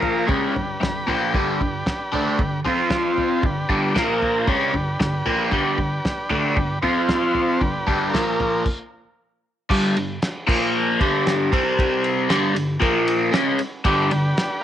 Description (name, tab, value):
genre	garage rock duo or trio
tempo	115 BPM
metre	4/4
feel	straight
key	unclear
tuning	A4 = 436 Hz
part	combo organ	sustained chords	0.0-8.6, 13.9-14.6 s	Bb3 to B5	-26 LUFS	equal	cassette tape
part	overdriven electric guitar	riff	0.0-14.3 s	G2 to F4	-20 LUFS	equal	phaser, cassette tape
part	cloth-damped thuddy drum kit	drums	0.0-14.5 s	crash cymbal, kick drum, ride cymbal, snare drum, toms	-25 LUFS	equal	cassette tape
room	light reverb, small room ambience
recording	home recording on cassette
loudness	-18 LUFS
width	side -11 dB against mid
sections	0.0-9.7 A section; 9.7-14.6 B section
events	transistor combo organ fill 0.6-1.3; stop 8.7-9.7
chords	0.3 G; 2.6 F5; 3.4 G; 4.0 Bb5; 4.5 G; 6.8 F5; 7.6 G; 8.1 Bb5; 8.7 N.C.; 9.7 G5; 10.5 Bb5; 11.0 G5; 11.5 C5; 12.3 G5; 12.8 Bb5; 13.3 G